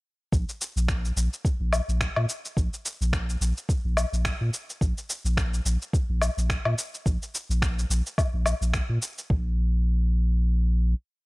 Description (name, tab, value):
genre	organic downtempo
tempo	107 BPM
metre	4/4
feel	swing 56% on 16ths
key	unclear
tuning	A4 = 440 Hz
part	warm sub bass	bass	0.3-10.9 s	Bb1 to Bb2	-24 LUFS	equal	sidechain pumping
part	electronic kick drum	drums	0.3-9.4 s	none	-26 LUFS	equal	none
part	electronic shaker, finger snaps and woodblock	drums	0.3-9.3 s	none	-30 LUFS	left 1 dB	none
room	digital ambience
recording	dry, gritty hardware recording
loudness	-24 LUFS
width	side -23 dB against mid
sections	0.3-9.3 groove; 9.3-11.2 final note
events	none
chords	none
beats	| 0.33 0.89 1.45 2.01 | 2.57 3.13 3.69 4.25 | 4.81 5.37 5.93 6.50 | 7.06 7.62 8.18 8.74 | 9.30 9.86 10.42